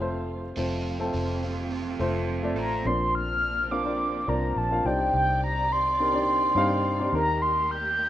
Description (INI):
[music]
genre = piano-driven pop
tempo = 105 BPM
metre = 4/4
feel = straight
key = Bb major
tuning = A4 = 440 Hz
[part]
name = dark upright piano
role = accompaniment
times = 0.0-8.1 s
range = Bb2 to F5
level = -29 LUFS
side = left 1 dB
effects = plate reverb
[part]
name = warm studio string section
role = sustained chords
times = 0.0-8.1 s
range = C3 to D5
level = -39 LUFS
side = right 1 dB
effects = plate reverb
[part]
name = vintage muted fingered electric bass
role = bass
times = 0.0-8.1 s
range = F1 to G2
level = -31 LUFS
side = left 1 dB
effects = none
[part]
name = overdriven semi-hollow guitar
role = riff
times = 0.6-2.9 s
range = F3 to A4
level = -33 LUFS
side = right 7 dB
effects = phaser
[part]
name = mellow horn-like synth lead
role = melody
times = 2.6-8.1 s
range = G5 to G6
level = -25 LUFS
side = equal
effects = chorus, plate reverb
[sound]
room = wet studio ambience, RT60 0.5 s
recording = rough home demo mix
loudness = -23 LUFS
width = side -12 dB against mid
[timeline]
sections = 0.6-2.9 A section; 2.9-8.1 B section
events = none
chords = 0.0 F; 2.9 Bbadd9; 4.8 Cmadd9; 7.1 Eb